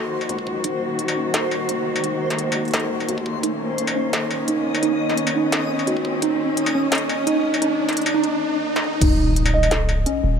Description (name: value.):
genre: half-time drum and bass.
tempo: 172 BPM.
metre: 4/4.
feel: swing 53% on 16ths, half-time.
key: Eb dorian.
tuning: A4 = 440 Hz.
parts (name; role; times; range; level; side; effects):
muted symphonic cello section; sustained chords; 0.0-9.0 s; Eb3 to Gb4; -26 LUFS; left 2 dB; sidechain pumping.
riser and impact; sound effects; 0.3-10.4 s; none; -28 LUFS; equal; none.
backwards swelling texture; texture; 0.1-8.3 s; C5 to Eb5; -29 LUFS; equal; built-in reverb.
industrial drum kit; drums; 0.2-10.1 s; crash cymbal, hi-hat, snare drum, struck metal, toms; -25 LUFS; left 1 dB; high-pass filter on hats, high-pass filter on snare, high-pass filter on perc, high-pass filter on toms, high-pass filter on cymbals, high-pass filter on room.
warbly dusty pluck; arpeggios; 0.3-10.2 s; Db4 to Eb5; -24 LUFS; right 2 dB; lush chorus, ping-pong delay.
long sustained 808-style bass; bass; 0.3-10.4 s; Eb1 to Eb2; -27 LUFS; equal; high-pass filter.
electronic kick drum; drums; 0.4-0.7, 3.2-3.5, 6.0-9.1 s; none; -23 LUFS; equal; high-pass filter on kick, high-pass filter on room.
room: light reverb, digital ambience.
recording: faint mains hum.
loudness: -19 LUFS.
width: side -7 dB against mid.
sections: 0.0-9.0 A section; 9.0-10.4 B section.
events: build-up 0.0-9.0; filter sweep on synth pluck 0.0-9.0; riser 0.3-9.0; break 8.3-9.0; drum fill 8.8; drop 9.0-10.4; impact 9.0-10.4.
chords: 0.0 Ebm; 9.0 N.C..